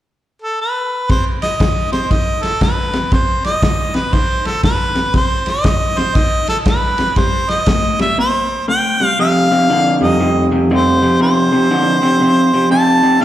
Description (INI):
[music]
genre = electric blues shuffle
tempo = 119 BPM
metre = 4/4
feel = swing 63% on 8ths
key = F mixolydian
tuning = A4 = 440 Hz
[part]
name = warm harmonica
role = melody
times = 0.4-13.2 s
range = A4 to A5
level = -16 LUFS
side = equal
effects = plate reverb, slapback echo
[part]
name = electric guitar through a small old amp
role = riff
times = 1.1-13.2 s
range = F2 to Bb3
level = -16 LUFS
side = left 1 dB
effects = none
[part]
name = warm soul drum kit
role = drums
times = 1.1-8.1 s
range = kick drum, ride cymbal, snare drum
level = -17 LUFS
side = equal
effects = none
[part]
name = dark concert grand piano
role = accompaniment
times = 10.0-11.0 s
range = F2 to F4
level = -18 LUFS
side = right 3 dB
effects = none
[sound]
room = light reverb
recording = live gig heard through the venue's PA, recital hall reverb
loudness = -12 LUFS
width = side -12 dB against mid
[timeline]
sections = 0.0-1.1 A section; 1.1-9.2 B section; 9.2-13.2 C section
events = none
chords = 0.0 N.C.; 1.1 F5; 7.2 C5; 9.2 F7